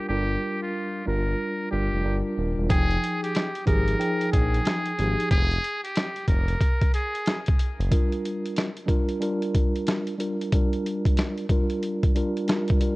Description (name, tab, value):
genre	hip hop, boom-bap hip-hop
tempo	92 BPM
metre	4/4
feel	swing 62% on 16ths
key	F dorian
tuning	A4 = 440 Hz
part	trumpet with metal mute	melody	0.0-7.4 s	F4 to Bb4	-29 LUFS	equal	high-pass filter, low-pass filter, ping-pong delay
part	mellow tine electric piano	accompaniment	0.0-13.0 s	F3 to G5	-27 LUFS	equal	medium stereo tremolo, cassette tape, high-pass filter, low-pass filter
part	smooth synth bass	bass	0.1-7.9 s	Eb1 to Bb1	-26 LUFS	equal	tube saturation
part	boom bap sampler-style drum kit	drums	2.7-13.0 s	hi-hat, kick drum, snare drum	-23 LUFS	equal	none
room	little or no reverb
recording	worn, warbling old tape, cassette tape, warbly pitch drift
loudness	-22 LUFS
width	side -21 dB against mid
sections	0.0-2.7 A section; 2.7-13.0 B section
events	filter sweep 0.0-2.7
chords	0.0 Gm7; 2.7 Fm9; 7.9 Gm7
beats	| 0.09 0.74 1.39 2.05 | 2.70 3.35 4.00 4.66 | 5.31 5.96 6.61 7.26 | 7.92 8.57 9.22 9.87 | 10.53 11.18 11.83 12.48